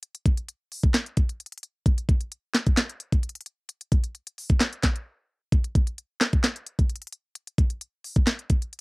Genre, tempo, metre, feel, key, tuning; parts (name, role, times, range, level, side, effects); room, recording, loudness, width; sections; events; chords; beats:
hip hop; 131 BPM; 4/4; half-time
trap drum kit; drums; 0.0-8.8 s; handclaps, hi-hat, kick drum, snare drum; -22 LUFS; equal; cassette tape
light reverb; home recording on cassette; -23 LUFS; side -28 dB against mid
0.0-8.8 A section
break 5.1-5.5
| 0.03 0.48 0.94 1.40 | 1.86 2.32 2.77 3.23 | 3.69 4.15 4.61 5.06 | 5.52 5.98 6.44 6.90 | 7.35 7.81 8.27 8.73